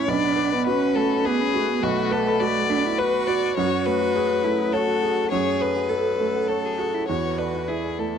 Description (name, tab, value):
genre	neoclassical piano and strings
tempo	103 BPM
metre	3/4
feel	rubato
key	unclear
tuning	A4 = 440 Hz
part	rich violin	melody	0.0-8.2 s	F#4 to D5	-24 LUFS	left 7 dB	none
part	bright cello	second line	0.0-8.2 s	A3 to A4	-26 LUFS	right 6 dB	none
part	felt-muted upright piano	accompaniment	0.0-8.2 s	B1 to D5	-27 LUFS	right 8 dB	none
part	Celtic harp	arpeggios	0.0-8.2 s	A3 to D6	-30 LUFS	left 9 dB	slapback echo
room	light reverb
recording	dry, close 1970s-style studio recording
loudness	-20 LUFS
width	side -8 dB against mid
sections	0.0-8.2 A section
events	none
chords	0.1 Bm7; 3.6 F#madd9; 7.1 E7sus4